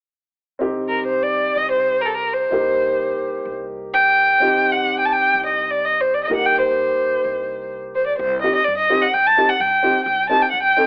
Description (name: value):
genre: klezmer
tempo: free time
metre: none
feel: none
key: C dorian sharp4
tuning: A4 = 440 Hz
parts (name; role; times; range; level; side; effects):
- warm upright piano; accompaniment; 0.6-10.9 s; Bb3 to A4; -26 LUFS; equal; cassette tape, plate reverb
- upright bass; bass; 0.6-10.8 s; C2 to G2; -44 LUFS; equal; none
- warm violin; melody; 0.9-10.9 s; A4 to A5; -19 LUFS; equal; cassette tape, plate reverb
room: moderate studio reverb, RT60 0.5 s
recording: home recording on cassette, telephone sound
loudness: -19 LUFS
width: mono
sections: 0.6-8.2 A section; 8.2-10.9 B section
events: none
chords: 0.6 Cm; 2.5 Eb/C; 4.4 Cm; 6.3 Eb/C; 8.2 Cm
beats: free time